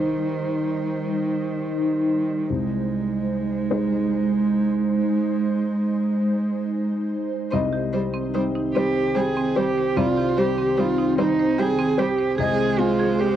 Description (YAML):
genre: neoclassical piano and strings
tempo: 49 BPM (dotted quarters)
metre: 6/8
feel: rubato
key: C minor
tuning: A4 = 440 Hz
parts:
  - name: warm cello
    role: second line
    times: 0.0-13.4 s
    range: Eb3 to Ab4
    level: -24 LUFS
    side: right 5 dB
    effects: cassette tape
  - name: dark grand piano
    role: accompaniment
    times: 0.0-13.4 s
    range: C2 to G5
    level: -27 LUFS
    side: left 5 dB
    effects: cassette tape
  - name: ethereal airy pad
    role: sustained chords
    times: 0.0-13.4 s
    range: Eb3 to C5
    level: -26 LUFS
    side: left 2 dB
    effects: ensemble chorus, built-in reverb, phaser, cassette tape
  - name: rich violin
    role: melody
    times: 7.5-13.4 s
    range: C5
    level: -30 LUFS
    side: left 4 dB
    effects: cassette tape
  - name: rich viola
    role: accompaniment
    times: 7.5-13.4 s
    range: G3 to Ab3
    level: -28 LUFS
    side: right 4 dB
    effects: cassette tape
  - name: marimba with hard mallets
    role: arpeggios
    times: 7.5-13.3 s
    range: C4 to Ab5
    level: -28 LUFS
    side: right 4 dB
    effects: cassette tape, tape echo
room: wet spring reverb, RT60 2.8 s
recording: home recording on cassette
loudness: -20 LUFS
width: side -10 dB against mid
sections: 0.0-7.5 A section; 7.5-13.4 B section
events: none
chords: 0.0 Cm; 2.5 Ab/C; 7.5 Cm; 12.4 Ab/C